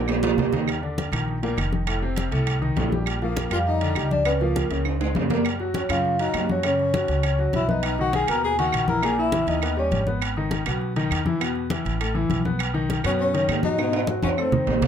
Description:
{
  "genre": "Afro-Cuban jazz",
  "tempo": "201 BPM",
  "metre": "4/4",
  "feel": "straight",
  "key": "F# major from 5.4 s",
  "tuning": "A4 = 441 Hz",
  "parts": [
    { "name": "clear baby grand piano", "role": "accompaniment", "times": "0.0-14.9 s", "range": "A2 to C#5", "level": "-27 LUFS", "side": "left 2 dB", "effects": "none" },
    { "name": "upright bass", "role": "bass", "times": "0.0-14.9 s", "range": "F1 to G#2", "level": "-27 LUFS", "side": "right 1 dB", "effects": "none" },
    { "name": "claves", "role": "percussion", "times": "0.1-14.5 s", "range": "none", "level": "-33 LUFS", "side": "right 12 dB", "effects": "none" },
    { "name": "congas", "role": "percussion", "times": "0.1-14.9 s", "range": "none", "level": "-29 LUFS", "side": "left 2 dB", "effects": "none" },
    { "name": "timbales", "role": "percussion", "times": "0.1-14.9 s", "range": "none", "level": "-29 LUFS", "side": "right 5 dB", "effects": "none" },
    { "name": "vibraphone with soft mallets", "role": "melody", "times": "3.2-10.1, 13.1-14.8 s", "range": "Bb4 to A#5", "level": "-25 LUFS", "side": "equal", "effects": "plate reverb" },
    { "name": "breathy tenor saxophone", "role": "second line", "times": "3.2-10.1, 13.1-14.8 s", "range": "Bb3 to A#4", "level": "-29 LUFS", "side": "left 6 dB", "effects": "none" }
  ],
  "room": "moderate club reverb, RT60 0.5 s",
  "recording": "none",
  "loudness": "-21 LUFS",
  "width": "side -8 dB against mid",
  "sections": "0.0-5.4 A section; 5.4-14.9 B section",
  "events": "drum fill 0.0-0.7, 4.9-5.4, 13.8-14.9",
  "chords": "0.1 Bb5; 0.7 Ebsus2; 1.9 F7; 3.1 Bb6; 4.3 Db6; 5.4 F#5; 7.8 Bmaj7; 9.0 Emaj7#11/A#; 9.6 D#aug7; 10.2 G#m; 11.4 Asus2; 12.6 Badd9; 13.8 G#m7"
}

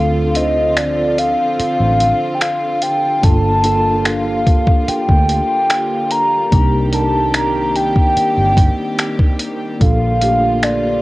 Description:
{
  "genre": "contemporary R&B",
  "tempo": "73 BPM",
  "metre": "4/4",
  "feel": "straight",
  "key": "G minor",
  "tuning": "A4 = 439 Hz",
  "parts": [
    { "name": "hollow clarinet-like synth lead", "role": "melody", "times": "0.0-11.0 s", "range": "D5 to Bb5", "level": "-16 LUFS", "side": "equal", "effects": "chorus" },
    { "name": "mellow tine electric piano", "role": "accompaniment", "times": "0.0-11.0 s", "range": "D3 to C5", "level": "-21 LUFS", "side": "equal", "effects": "medium stereo tremolo" },
    { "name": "warm studio string section", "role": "sustained chords", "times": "0.0-11.0 s", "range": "D3 to A4", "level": "-23 LUFS", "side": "equal", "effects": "none" },
    { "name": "vintage muted fingered electric bass", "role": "bass", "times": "0.0-11.0 s", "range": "G1 to D2", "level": "-19 LUFS", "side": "equal", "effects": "none" },
    { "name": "dusty soul sampler-style drum kit", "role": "drums", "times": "0.4-10.8 s", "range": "finger snaps, hi-hat, kick drum", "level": "-15 LUFS", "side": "equal", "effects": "vintage 12-bit sampler grit" }
  ],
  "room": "light reverb",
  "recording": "home recording on cassette",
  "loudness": "-13 LUFS",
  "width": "side -19 dB against mid",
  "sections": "0.0-11.0 A section",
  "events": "break 0.0-3.2",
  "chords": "0.0 Dm7; 3.2 Gm9; 6.5 Cm7; 9.8 Gm9/Bb"
}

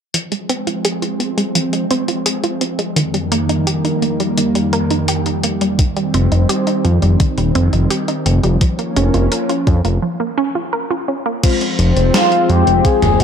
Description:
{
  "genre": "synthwave",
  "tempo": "85 BPM",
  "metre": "4/4",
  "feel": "straight",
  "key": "F minor",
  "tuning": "A4 = 440 Hz",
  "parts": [
    { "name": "lush unison pad", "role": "sustained chords", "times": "0.1-13.2 s", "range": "F2 to Db4", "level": "-19 LUFS", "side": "equal", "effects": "chorus, sidechain pumping" },
    { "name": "wide unison pluck", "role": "arpeggios", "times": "0.1-11.4 s", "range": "Eb3 to Bb4", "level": "-20 LUFS", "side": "right 2 dB", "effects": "ping-pong delay" },
    { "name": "gated 80s digital drum machine", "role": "drums", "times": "0.1-13.2 s", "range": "crash cymbal, hi-hat, snare drum, toms", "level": "-21 LUFS", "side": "left 2 dB", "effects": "gated reverb, gated reverb snare" },
    { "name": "electronic kick drum", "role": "drums", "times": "5.8-13.2 s", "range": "none", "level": "-15 LUFS", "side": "equal", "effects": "none" },
    { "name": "fat analog bass", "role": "bass", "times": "6.1-13.2 s", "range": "Eb1 to F2", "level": "-14 LUFS", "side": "equal", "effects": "none" },
    { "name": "FM electric piano with soft pad layer", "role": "stabs", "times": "11.4-13.2 s", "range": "Ab3 to Eb5", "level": "-21 LUFS", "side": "left 4 dB", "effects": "chorus, ping-pong delay" },
    { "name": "expressive synth lead", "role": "melody", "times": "12.1-13.2 s", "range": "F4 to Ab4", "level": "-14 LUFS", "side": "left 2 dB", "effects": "wide subtle chorus" }
  ],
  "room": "moderate plate reverb, RT60 2.3 s",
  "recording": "dark, warm production",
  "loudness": "-14 LUFS",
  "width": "side -7 dB against mid",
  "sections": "0.1-11.4 A section; 11.4-13.2 B section",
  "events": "filter sweep on analog synth pad 0.1-11.4; filter sweep on synth arpeggio sound 0.1-11.4; break 10.0-11.4",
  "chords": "0.1 Fm; 3.0 Eb/F; 5.8 Cm/F; 8.6 Bbm/F; 11.4 Fm"
}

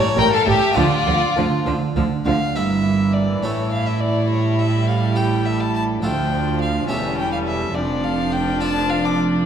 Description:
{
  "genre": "classical, baroque-style concerto movement with solo episodes",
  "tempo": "69 BPM (dotted quarters)",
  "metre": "6/8",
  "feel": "straight",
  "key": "D minor",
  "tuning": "A4 = 440 Hz",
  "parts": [
    { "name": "warm violin", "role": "melody", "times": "0.0-9.2 s", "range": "F4 to D6", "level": "-24 LUFS", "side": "left 1 dB", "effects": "none" },
    { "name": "harpsichord", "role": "accompaniment", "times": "0.0-9.4 s", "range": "D2 to A4", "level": "-26 LUFS", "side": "right 2 dB", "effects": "none" },
    { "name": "warm chamber violin section", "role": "melody", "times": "0.2-9.4 s", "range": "A4 to G5", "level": "-30 LUFS", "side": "left 3 dB", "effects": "none" },
    { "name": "rich chamber violin section", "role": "second line", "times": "0.2-9.5 s", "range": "C#4 to Bb4", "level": "-24 LUFS", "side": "left 3 dB", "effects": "none" },
    { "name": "dark chamber viola section", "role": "accompaniment", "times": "0.2-9.4 s", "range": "E3 to G3", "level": "-28 LUFS", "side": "right 1 dB", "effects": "none" },
    { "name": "rich chamber double bass section", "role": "bass", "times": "0.2-9.4 s", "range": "E1 to D2", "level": "-24 LUFS", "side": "right 3 dB", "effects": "none" },
    { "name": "warm chamber cello section", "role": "bass", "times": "0.2-9.4 s", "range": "D2 to D3", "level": "-24 LUFS", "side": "right 3 dB", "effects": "none" }
  ],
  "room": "wet scoring stage reverb, RT60 1.8 s",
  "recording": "minimal, uncompressed stereo recording",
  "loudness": "-17 LUFS",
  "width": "side -8 dB against mid",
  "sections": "0.0-2.6 A section; 2.6-9.5 B section",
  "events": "none",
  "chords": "0.0 A7; 0.8 Dm; 2.6 Edim/G; 3.4 A5; 6.0 Dm; 6.9 A7/E; 7.7 Dm/F"
}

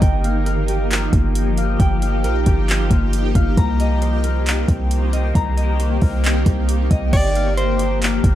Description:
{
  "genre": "hip hop, atmospheric cloud-rap",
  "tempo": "135 BPM",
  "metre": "4/4",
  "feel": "half-time",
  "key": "G minor",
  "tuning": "A4 = 438 Hz",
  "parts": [
    { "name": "shimmering ambient pad", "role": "sustained chords", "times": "0.0-8.3 s", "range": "Eb3 to G4", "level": "-24 LUFS", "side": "equal", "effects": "chorus, built-in reverb, phaser, sidechain pumping" },
    { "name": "Celtic harp", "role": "arpeggios", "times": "0.0-8.3 s", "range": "Bb3 to Bb5", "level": "-26 LUFS", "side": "left 3 dB", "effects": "low-pass filter, digital delay" },
    { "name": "warm 808-style bass", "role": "bass", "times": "0.0-8.3 s", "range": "G1 to C2", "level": "-19 LUFS", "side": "equal", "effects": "none" },
    { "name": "smooth R&B drum kit", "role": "drums", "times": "0.0-8.3 s", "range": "crash cymbal, handclaps, hi-hat, kick drum", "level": "-19 LUFS", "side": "equal", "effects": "none" },
    { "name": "clean electric guitar", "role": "melody", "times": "7.1-8.0 s", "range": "C5 to D5", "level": "-22 LUFS", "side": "right 1 dB", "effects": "low-pass filter, digital delay" }
  ],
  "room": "little or no reverb",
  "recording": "dark, warm production",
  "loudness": "-16 LUFS",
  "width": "side -12 dB against mid",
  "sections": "0.0-7.1 A section; 7.1-8.3 B section",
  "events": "none",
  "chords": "0.0 Gm7; 3.6 Cm7; 7.1 Gm7"
}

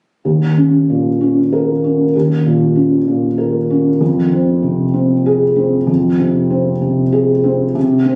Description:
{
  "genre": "neoclassical minimalist piano",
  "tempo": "96 BPM",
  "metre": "3/4",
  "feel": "rubato",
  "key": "F minor",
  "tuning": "A4 = 440 Hz",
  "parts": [
    { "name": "felt-muted upright piano", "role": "solo", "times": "0.2-8.2 s", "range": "Eb2 to Bb4", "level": "-14 LUFS", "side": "equal", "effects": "none" }
  ],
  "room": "moderate small room reverb, RT60 0.5 s",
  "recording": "recorded on a phone in the room, club reverb, compression",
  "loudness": "-14 LUFS",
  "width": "mono",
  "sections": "0.2-8.2 A section",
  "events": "none",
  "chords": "0.2 Eb5; 4.0 Fm"
}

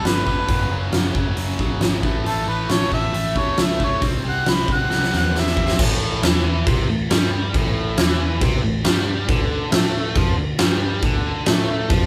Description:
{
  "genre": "blues rock power trio and southern rock",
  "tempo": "137 BPM",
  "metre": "4/4",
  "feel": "straight",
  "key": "unclear",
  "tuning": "A4 = 442 Hz",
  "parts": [
    { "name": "clear harmonica", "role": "melody", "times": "0.0-5.8 s", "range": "A4 to B5", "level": "-26 LUFS", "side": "equal", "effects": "overdrive" },
    { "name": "biting overdriven guitar", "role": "riff", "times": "0.0-12.1 s", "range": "F#2 to C4", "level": "-28 LUFS", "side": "equal", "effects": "none" },
    { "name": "vintage muted picked electric bass", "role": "bass", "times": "0.0-12.1 s", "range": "F#1 to A2", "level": "-27 LUFS", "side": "equal", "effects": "none" },
    { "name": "huge arena drum kit", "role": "drums", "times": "0.0-12.0 s", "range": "crash cymbal, hi-hat, kick drum, snare drum, toms", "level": "-22 LUFS", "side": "equal", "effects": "none" }
  ],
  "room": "light reverb",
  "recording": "band playing live in one room",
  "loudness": "-20 LUFS",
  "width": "mono",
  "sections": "0.0-5.8 A section; 5.8-12.1 B section",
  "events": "drum fill 4.9-5.8",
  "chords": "0.5 F#5; 2.0 A; 4.0 C; 5.8 A5; 9.3 D5"
}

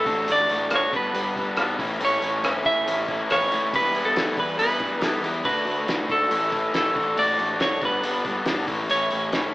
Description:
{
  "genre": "indie rock",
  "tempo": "139 BPM",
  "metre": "4/4",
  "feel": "straight",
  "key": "D major",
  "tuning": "A4 = 439 Hz",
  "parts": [
    { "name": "clean electric guitar", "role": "melody", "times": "0.0-9.5 s", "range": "A4 to E5", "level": "-23 LUFS", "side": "equal", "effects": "none" },
    { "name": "crunchy overdriven guitar", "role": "riff", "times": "0.0-9.5 s", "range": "G2 to F#4", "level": "-25 LUFS", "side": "left 1 dB", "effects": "spring reverb" },
    { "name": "fuzz picked electric bass", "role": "bass", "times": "0.0-9.5 s", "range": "E1 to A2", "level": "-34 LUFS", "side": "equal", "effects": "overdrive" },
    { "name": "cloth-damped thuddy drum kit", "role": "drums", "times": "0.1-9.4 s", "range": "hi-hat, kick drum, rim click, snare drum", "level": "-29 LUFS", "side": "equal", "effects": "none" }
  ],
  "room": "moderate large studio reverb, RT60 1.2 s",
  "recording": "band playing live in one room, AM radio sound",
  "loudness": "-20 LUFS",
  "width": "side -19 dB against mid",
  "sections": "0.0-9.5 A section",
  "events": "none",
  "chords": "0.1 D/A; 0.9 G; 1.8 A; 3.7 Em; 5.5 D; 6.3 A; 7.0 D/A; 7.8 G; 8.7 A"
}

